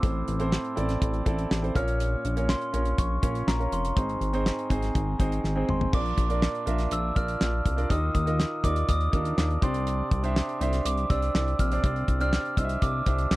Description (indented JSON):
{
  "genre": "piano-driven pop",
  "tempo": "122 BPM",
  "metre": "4/4",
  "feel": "straight",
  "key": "unclear",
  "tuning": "A4 = 440 Hz",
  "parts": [
    { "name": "glockenspiel with rubber mallets", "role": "melody", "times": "0.0-13.4 s", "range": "Bb5 to F6", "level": "-32 LUFS", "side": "equal", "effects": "slapback echo" },
    { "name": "clear baby grand piano", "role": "accompaniment", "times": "0.0-13.4 s", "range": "Ab2 to E5", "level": "-30 LUFS", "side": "right 2 dB", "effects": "none" },
    { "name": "chorused synth bass", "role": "bass", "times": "0.0-13.4 s", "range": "F1 to Eb2", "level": "-28 LUFS", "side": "equal", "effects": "none" },
    { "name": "damped 70s drum kit", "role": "drums", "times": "0.0-13.4 s", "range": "crash cymbal, handclaps, hi-hat, kick drum, snare drum, toms", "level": "-27 LUFS", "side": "equal", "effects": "none" }
  ],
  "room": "little or no reverb",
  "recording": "dry, close 1970s-style studio recording",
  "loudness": "-24 LUFS",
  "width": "side -19 dB against mid",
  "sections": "0.0-5.9 A section; 5.9-13.4 B section",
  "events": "drum fill 5.4-5.9",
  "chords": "0.0 Am; 1.8 Bbm; 4.0 Ab; 5.9 Bb; 7.9 Ebsus2; 9.6 Csus2"
}